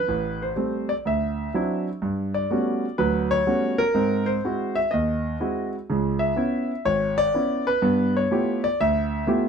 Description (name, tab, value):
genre	solo jazz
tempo	124 BPM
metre	4/4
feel	swing 67% on 8ths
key	unclear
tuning	A4 = 439 Hz
part	clear concert grand piano	solo	0.0-9.5 s	G#1 to E5	-21 LUFS	equal	none
room	moderate studio reverb, RT60 0.6 s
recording	none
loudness	-21 LUFS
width	side -6 dB against mid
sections	0.0-9.5 A section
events	none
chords	0.1 Am7; 1.1 D9; 2.0 Gmaj9#11; 4.0 G#7b13; 5.9 C#m7; 7.8 G13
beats	| 0.08 0.57 1.05 1.53 | 2.02 2.50 2.98 3.47 | 3.95 4.43 4.92 5.40 | 5.89 6.37 6.85 7.34 | 7.82 8.30 8.79 9.27